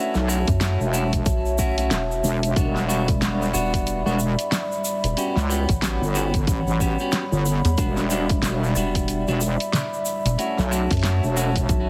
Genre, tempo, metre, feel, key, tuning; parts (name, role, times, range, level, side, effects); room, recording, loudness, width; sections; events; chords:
glitch hop; 92 BPM; 4/4; swing 60% on 16ths; E dorian; A4 = 440 Hz
dark analog pad; sustained chords; 0.0-11.9 s; G3 to B5; -30 LUFS; equal; chorus, sidechain pumping
clean electric guitar; stabs; 0.0-11.6 s; G3 to G4; -31 LUFS; equal; sidechain pumping, digital delay
pop drum kit; drums; 0.1-11.8 s; hi-hat, rim click, snare drum; -30 LUFS; equal
tube shaker; percussion; 0.1-11.8 s; -36 LUFS; equal
wobble bass; bass; 0.2-11.7 s; E1 to C#2; -25 LUFS; equal; chorus
rubbery square bass; bass; 0.5-11.9 s; E1 to F#2; -26 LUFS; equal
electronic kick drum; drums; 0.5-11.8 s; -26 LUFS; equal
light reverb; heavily compressed radio sound; -22 LUFS; mono
0.0-11.9 A section
0.0 F#m7; 2.6 Em7; 5.2 A13; 7.8 Em7; 10.4 F#m7